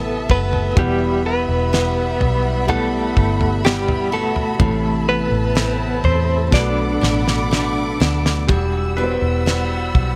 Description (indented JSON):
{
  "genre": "pop ballad",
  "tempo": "62 BPM",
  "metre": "4/4",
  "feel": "straight",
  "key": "E minor",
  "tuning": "A4 = 440 Hz",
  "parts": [
    { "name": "direct-recorded clean electric guitar", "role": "melody", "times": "0.0-8.0 s", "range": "G3 to D5", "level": "-24 LUFS", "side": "equal", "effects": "tremolo" },
    { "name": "felt-muted upright piano", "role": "accompaniment", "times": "0.0-10.2 s", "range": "A2 to F#5", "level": "-26 LUFS", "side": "equal", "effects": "none" },
    { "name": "dark studio string section", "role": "sustained chords", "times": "0.0-10.2 s", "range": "G3 to E6", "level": "-28 LUFS", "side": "equal", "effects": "none" },
    { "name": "picked steel-string acoustic guitar", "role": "arpeggios", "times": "0.0-10.2 s", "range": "E2 to F#4", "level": "-32 LUFS", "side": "equal", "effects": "none" },
    { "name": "vintage muted fingered electric bass", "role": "bass", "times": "0.0-10.2 s", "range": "E1 to E2", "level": "-24 LUFS", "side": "equal", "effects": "none" },
    { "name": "damped 70s drum kit", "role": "drums", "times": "0.3-10.2 s", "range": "kick drum, snare drum, toms", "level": "-20 LUFS", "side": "equal", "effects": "none" }
  ],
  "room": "small room ambience",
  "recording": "none",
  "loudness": "-18 LUFS",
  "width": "mono",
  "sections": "0.0-8.5 A section; 8.5-10.2 B section",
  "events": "drum fill 6.5-8.5; felt piano solo 8.5-10.2",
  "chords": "0.0 Amadd9; 0.8 Emadd9; 4.6 Amadd9; 6.5 Bm7; 8.5 Emadd9"
}